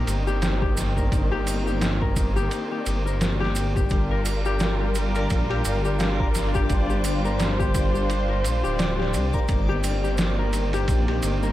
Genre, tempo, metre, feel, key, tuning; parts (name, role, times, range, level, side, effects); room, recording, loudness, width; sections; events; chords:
trip hop; 86 BPM; 4/4; swing 58% on 16ths; A4 = 440 Hz
rich studio string section; sustained chords; 0.0-11.5 s; Eb3 to C5; -29 LUFS; equal
concert harp; arpeggios; 0.0-11.5 s; F4 to Bb4; -30 LUFS; left 4 dB; digital delay
dark detuned saw bass; bass; 0.0-11.5 s; D1 to C2; -25 LUFS; equal; tube saturation
backwards swelling texture; texture; 0.0-11.5 s; D4 to D5; -35 LUFS; equal; built-in reverb
trip hop sampler-style drum kit; drums; 0.1-11.4 s; kick drum, ride cymbal, snare drum; -26 LUFS; equal
tube shaker and triangle; percussion; 0.1-11.5 s; -37 LUFS; right 4 dB
little or no reverb; -21 LUFS; side -14 dB against mid
0.0-11.5 A section
0.0 Cm9/G; 3.9 Bb69; 9.5 Cm9/G